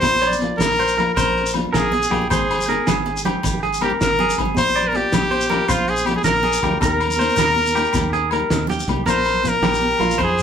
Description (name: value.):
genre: highlife guitar band.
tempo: 106 BPM (dotted quarters).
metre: 12/8.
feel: straight.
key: Bb mixolydian.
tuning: A4 = 440 Hz.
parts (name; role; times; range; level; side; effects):
bright trumpet; melody; 0.0-10.4 s; F4 to C5; -19 LUFS; left 1 dB; none.
mellow electric guitar; accompaniment; 0.0-10.1 s; Eb3 to Ab4; -28 LUFS; left 4 dB; none.
fingered electric bass; bass; 0.0-10.4 s; Ab1 to F2; -27 LUFS; equal; none.
cloth-damped thuddy drum kit; drums; 0.0-10.4 s; hi-hat, kick drum, snare drum; -26 LUFS; right 1 dB; none.
agogo bells; percussion; 0.0-10.4 s; none; -29 LUFS; left 7 dB; none.
congas; percussion; 0.0-10.4 s; none; -27 LUFS; right 2 dB; none.
shekere; percussion; 0.0-10.4 s; none; -28 LUFS; left 3 dB; none.
clean electric guitar; arpeggios; 0.2-10.4 s; F4 to D5; -23 LUFS; right 2 dB; none.
room: moderate studio reverb, RT60 0.6 s.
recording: band playing live in one room.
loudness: -16 LUFS.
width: side -8 dB against mid.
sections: 0.0-9.1 A section; 9.1-10.4 B section.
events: none.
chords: 0.0 Bb; 2.3 Ab; 4.6 Bb; 6.8 Eb; 9.1 Bb.